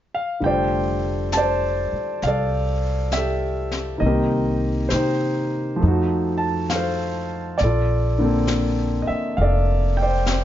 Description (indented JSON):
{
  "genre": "jazz ballad",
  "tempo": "67 BPM",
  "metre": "4/4",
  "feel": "swing 67% on 8ths",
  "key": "F major",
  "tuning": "A4 = 440 Hz",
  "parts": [
    { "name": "warm concert grand piano", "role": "accompaniment", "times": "0.1-10.4 s", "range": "D3 to A5", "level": "-21 LUFS", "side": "equal", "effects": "none" },
    { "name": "upright bass", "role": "bass", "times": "0.4-10.4 s", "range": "F1 to C3", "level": "-23 LUFS", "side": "equal", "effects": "none" },
    { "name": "jazz brush drum kit", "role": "drums", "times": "0.4-10.4 s", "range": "brushed snare drum, hi-hat, snare drum", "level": "-31 LUFS", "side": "left 3 dB", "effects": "none" }
  ],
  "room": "light reverb",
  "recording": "nothing above 7.5 kHz",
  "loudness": "-19 LUFS",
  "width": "side -12 dB against mid",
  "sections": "0.4-10.4 A section",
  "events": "none",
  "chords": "0.4 F69; 4.0 Cm7; 5.8 F7b9; 7.6 Bbmaj9"
}